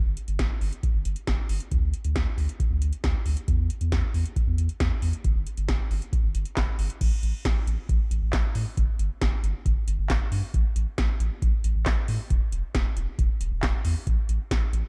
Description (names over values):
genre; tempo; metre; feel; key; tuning
synth-pop; 136 BPM; 4/4; straight; unclear; A4 = 441 Hz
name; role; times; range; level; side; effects
round analog bass; bass; 0.0-14.8 s; E1 to A2; -29 LUFS; equal; none
electro analog drum machine; drums; 0.2-14.8 s; crash cymbal, handclaps, hi-hat, kick drum, snare drum; -28 LUFS; equal; none
room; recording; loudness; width
little or no reverb; dark, warm production; -26 LUFS; mono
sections
0.0-7.0 A section; 7.0-14.9 B section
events
none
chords
none